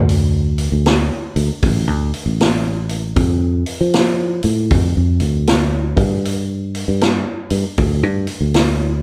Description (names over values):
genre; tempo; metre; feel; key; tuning
blues rock power trio and southern rock; 78 BPM; 4/4; swing 64% on 8ths; unclear; A4 = 440 Hz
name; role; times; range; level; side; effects
fingered electric bass; bass; 0.0-9.0 s; A1 to F3; -19 LUFS; equal; none
vintage drum kit; drums; 0.1-8.8 s; hi-hat, kick drum, snare drum; -21 LUFS; equal; none
room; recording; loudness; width
moderate large studio reverb, RT60 1.4 s; band playing live in one room; -17 LUFS; mono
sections
0.0-9.0 A section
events
none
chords
none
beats
| 0.10 0.87 1.64 2.41 | 3.18 3.94 4.71 5.48 | 6.25 7.01 7.78 8.55